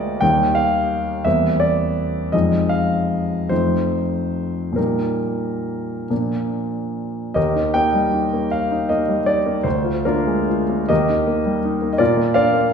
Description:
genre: classical, romantic character piece for solo piano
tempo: 44-58 BPM (dotted quarters)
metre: 6/8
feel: rubato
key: Eb major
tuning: A4 = 438 Hz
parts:
  - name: clear grand piano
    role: solo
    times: 0.0-12.7 s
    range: D2 to G5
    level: -17 LUFS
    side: equal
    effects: none
room: wet recital hall reverb, RT60 1.4 s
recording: recorded in a church or concert hall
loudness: -17 LUFS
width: side -6 dB against mid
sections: 0.0-7.4 A section; 7.4-12.7 B section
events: none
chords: 0.2 Eb; 1.2 C7/E; 2.3 Fm7; 3.5 F7; 4.8 Eb/Bb; 6.1 Bb; 7.4 Eb; 9.6 Bb7/D; 10.9 Eb; 12.0 Bb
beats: | 0.21 1.25 | 2.33 3.50 | 4.76 6.10 | 7.36 8.51 | 9.64 10.89 | 11.99

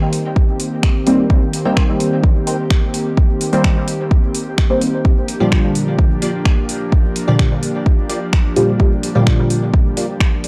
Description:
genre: dub techno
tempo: 128 BPM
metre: 4/4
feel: straight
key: C minor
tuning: A4 = 440 Hz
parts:
  - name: airy breathy pad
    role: sustained chords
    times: 0.0-10.5 s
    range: Eb3 to G4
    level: -25 LUFS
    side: equal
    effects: chorus, sidechain pumping
  - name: deep house drum kit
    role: drums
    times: 0.1-10.5 s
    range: finger snaps, hi-hat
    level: -26 LUFS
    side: equal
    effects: overdrive
  - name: electronic kick drum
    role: drums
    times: 0.4-10.3 s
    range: none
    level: -16 LUFS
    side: equal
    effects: overdrive
  - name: deep mellow chord stab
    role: stabs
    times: 1.1-10.5 s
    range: Bb2 to C4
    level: -20 LUFS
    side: equal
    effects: chorus, phaser, sidechain pumping, dub echo
  - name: wavetable chord stab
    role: riff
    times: 1.7-10.1 s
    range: Bb3 to G5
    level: -29 LUFS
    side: equal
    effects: sidechain pumping, dub echo
room: light reverb, digital ambience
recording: dry, gritty hardware recording, cassette tape, faint mains hum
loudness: -16 LUFS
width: mono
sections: 0.0-10.5 A section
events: none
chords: 0.0 Cm7; 5.0 Gm7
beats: 0.36 0.83 | 1.30 1.77 2.24 2.71 | 3.17 3.64 4.11 4.58 | 5.05 5.52 5.99 6.46 | 6.92 7.39 7.86 8.33 | 8.80 9.27 9.74 10.21

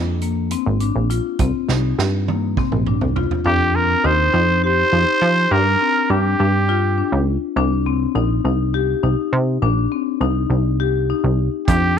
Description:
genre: progressive instrumental, band music in an uneven meter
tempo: 204 BPM (eighths)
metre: 7/8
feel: straight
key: C minor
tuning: A4 = 439 Hz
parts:
  - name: marimba with medium hard mallets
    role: arpeggios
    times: 0.0-11.9 s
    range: Bb3 to G4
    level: -22 LUFS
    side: left 12 dB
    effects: none
  - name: plucky analog bass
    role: bass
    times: 0.0-12.0 s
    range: Ab1 to F3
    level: -19 LUFS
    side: right 2 dB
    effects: none
  - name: natural country drum kit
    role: drums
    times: 0.2-3.4, 11.7-11.8 s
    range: hi-hat, kick drum, snare drum, toms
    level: -23 LUFS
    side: right 5 dB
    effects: none
  - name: growling trumpet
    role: melody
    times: 3.5-7.2, 11.7-12.0 s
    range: G4 to C5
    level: -17 LUFS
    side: right 2 dB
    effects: none
room: studio ambience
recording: 1960s-style stereo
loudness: -16 LUFS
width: side -8 dB against mid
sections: 0.0-3.5 A section; 3.5-12.0 B section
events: drum fill 1.7-3.5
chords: 0.0 Bb7; 1.4 Cm7; 3.5 Fsus2; 5.5 Gm7; 7.6 Cm7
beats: 0.22 0.51 0.81 1.10 | 1.40 1.69 1.98 2.28 2.57 2.87 3.16 | 3.45 3.75 4.04 4.33 4.63 4.92 5.22 | 5.51 5.80 6.10 6.39 6.68 6.98 7.27 | 7.57 7.86 8.15 8.45 8.74 9.04 9.33 | 9.62 9.92 10.21 10.51 10.80 11.10 11.39 | 11.68 11.98

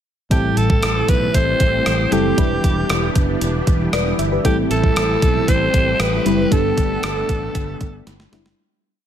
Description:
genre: 1980s-style pop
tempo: 116 BPM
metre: 4/4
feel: straight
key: A minor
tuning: A4 = 440 Hz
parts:
  - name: breathy alto saxophone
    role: melody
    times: 0.3-8.1 s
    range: G4 to C5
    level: -21 LUFS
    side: right 1 dB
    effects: none
  - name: mellow FM electric piano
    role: accompaniment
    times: 0.3-8.6 s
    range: G2 to E5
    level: -22 LUFS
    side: left 1 dB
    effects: chorus, phaser
  - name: string machine, full ensemble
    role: sustained chords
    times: 0.3-8.6 s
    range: D3 to G4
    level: -25 LUFS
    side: equal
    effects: ensemble chorus
  - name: fretless electric bass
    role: bass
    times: 0.3-8.5 s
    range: E1 to B1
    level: -23 LUFS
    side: equal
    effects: none
  - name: clean 12-bit digital drum machine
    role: drums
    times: 0.3-8.6 s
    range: hi-hat, kick drum, rim click, snare drum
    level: -20 LUFS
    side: equal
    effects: none
room: light reverb, digital ambience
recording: none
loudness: -15 LUFS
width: side -9 dB against mid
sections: 0.3-8.6 verse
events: fade-out 6.5-8.6; drum fill 8.1-8.6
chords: 0.3 Am7; 2.4 Em7; 4.4 Am7; 6.5 Gadd9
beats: | 0.31 0.83 1.34 1.86 | 2.38 2.90 3.41 3.93 | 4.45 4.96 5.48 6.00 | 6.52 7.03 7.55 8.07

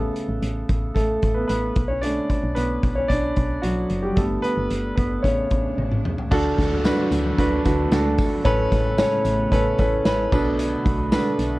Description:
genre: piano-driven pop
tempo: 112 BPM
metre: 4/4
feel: straight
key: D major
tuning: A4 = 436 Hz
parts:
  - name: warm concert grand piano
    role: accompaniment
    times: 0.0-11.6 s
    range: A2 to B5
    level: -22 LUFS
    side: equal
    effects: none
  - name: woody FM bass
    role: bass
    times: 0.0-11.6 s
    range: F#1 to D2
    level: -27 LUFS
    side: equal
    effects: none
  - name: loose indie drum kit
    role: drums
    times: 0.2-11.5 s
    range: crash cymbal, hi-hat, kick drum, snare drum, toms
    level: -24 LUFS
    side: equal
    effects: none
  - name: swell and downlifter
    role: sound effects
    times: 4.8-10.6 s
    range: none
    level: -35 LUFS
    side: equal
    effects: none
  - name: warm analog pad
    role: sustained chords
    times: 7.0-11.6 s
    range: C#3 to F#4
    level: -30 LUFS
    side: equal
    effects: chorus
  - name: tambourine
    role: percussion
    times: 6.3-11.5 s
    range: none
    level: -46 LUFS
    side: left 5 dB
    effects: none
room: moderate studio reverb, RT60 0.6 s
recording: worn, warbling old tape, cassette tape, warbly pitch drift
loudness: -19 LUFS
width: side -19 dB against mid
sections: 0.0-6.3 A section; 6.3-11.6 B section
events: grand piano solo 0.0-6.3; swell 4.8-6.3; drum fill 5.8-6.3; grand piano fill 9.8-10.6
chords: 0.0 Aadd9; 1.8 Bm7; 4.2 G; 5.2 Aadd9; 6.3 D; 8.5 Aadd9; 10.3 Bm7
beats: 0.43 0.96 1.50 | 2.03 2.57 3.10 3.64 | 4.17 4.71 5.25 5.78 | 6.32 6.85 7.38 7.92 | 8.45 8.99 9.52 10.06 | 10.59 11.12

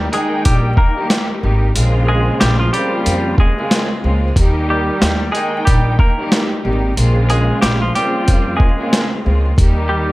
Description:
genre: hip hop, boom-bap hip-hop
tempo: 92 BPM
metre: 4/4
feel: swing 59% on 16ths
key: Bb dorian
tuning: A4 = 440 Hz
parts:
  - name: semi-hollow electric guitar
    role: melody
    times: 0.0-10.1 s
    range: F3 to Bb4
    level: -20 LUFS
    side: equal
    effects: wide subtle chorus, high-pass filter, low-pass filter, tape echo
  - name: clear studio string section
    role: accompaniment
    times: 0.0-10.1 s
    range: Db3 to G5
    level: -20 LUFS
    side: equal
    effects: high-pass filter, low-pass filter
  - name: upright bass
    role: bass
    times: 0.0-10.1 s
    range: Ab1 to F2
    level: -16 LUFS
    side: equal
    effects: none
  - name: boom bap sampler-style drum kit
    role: drums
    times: 0.1-9.8 s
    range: hi-hat, kick drum, snare drum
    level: -15 LUFS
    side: equal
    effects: none
room: little or no reverb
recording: vinyl crackle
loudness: -13 LUFS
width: side -19 dB against mid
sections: 0.0-10.1 A section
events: none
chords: 0.0 Eb; 1.8 Bbm7; 4.4 Eb; 7.0 Bbm7; 9.6 Eb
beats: 0.45 1.10 | 1.75 2.41 3.06 3.71 | 4.36 5.02 5.67 6.32 | 6.97 7.62 8.28 8.93 | 9.58

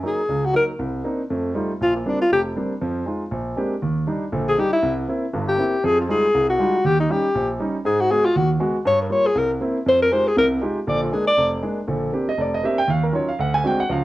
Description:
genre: jazz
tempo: 238 BPM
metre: 4/4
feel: swing 58% on 8ths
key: Bb major, Eb major from 3.8 s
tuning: A4 = 441 Hz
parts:
  - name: warm grand piano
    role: accompaniment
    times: 0.0-14.0 s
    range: F1 to G#5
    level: -22 LUFS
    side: right 1 dB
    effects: none
  - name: breathy alto saxophone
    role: melody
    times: 0.1-2.4, 4.5-11.5 s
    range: Bb3 to D5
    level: -18 LUFS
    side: left 1 dB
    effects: none
room: wet studio reverb, RT60 0.7 s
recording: worn, warbling old tape, cassette tape, warbly pitch drift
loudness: -18 LUFS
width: side -16 dB against mid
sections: 0.0-3.8 A section; 3.8-11.9 B section; 11.9-14.0 C section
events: none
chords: 0.0 Gb6; 0.8 Cm9; 1.3 F9; 1.8 Bb69; 2.8 Fm7; 3.3 Bb13; 3.8 Ebmaj7; 4.8 C7; 5.8 Fm9; 6.8 Eb7; 7.8 Abm7; 8.9 Gm7b5; 9.4 C7; 9.9 Fm9; 10.9 Bb7; 11.9 Bb69; 12.9 Ebm9; 13.4 D7#11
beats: 0.04 0.29 0.55 | 0.80 1.05 1.30 1.55 | 1.80 2.06 2.31 2.56 | 2.81 3.06 3.32 3.57 | 3.82 4.07 4.32 4.58 | 4.83 5.08 5.33 5.58 | 5.83 6.09 6.34 6.59 | 6.84 7.09 7.34 7.60 | 7.85 8.10 8.35 8.60 | 8.86 9.11 9.36 9.61 | 9.86 10.11 10.37 10.62 | 10.87 11.12 11.37 11.62 | 11.88 12.13 12.38 12.63 | 12.89 13.14 13.39 13.64 | 13.89

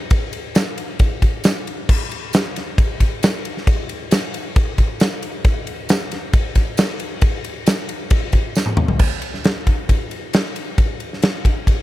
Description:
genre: rock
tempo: 135 BPM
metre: 4/4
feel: straight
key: none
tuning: none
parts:
  - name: huge arena drum kit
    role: drums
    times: 0.1-11.8 s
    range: crash cymbal, kick drum, ride cymbal, snare drum, toms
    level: -17 LUFS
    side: equal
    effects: none
  - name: tambourine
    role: percussion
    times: 0.6-8.7 s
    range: none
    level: -32 LUFS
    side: right 11 dB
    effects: none
room: little or no reverb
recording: dry, close 1970s-style studio recording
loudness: -17 LUFS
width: side -16 dB against mid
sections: 0.0-9.0 A section; 9.0-11.8 B section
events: drum fill 8.6-9.0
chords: none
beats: | 0.11 0.55 1.00 1.44 | 1.89 2.33 2.78 3.22 | 3.67 4.11 4.56 5.00 | 5.45 5.89 6.33 6.78 | 7.22 7.67 8.11 8.55 | 9.00 9.44 9.89 10.33 | 10.78 11.22 11.67

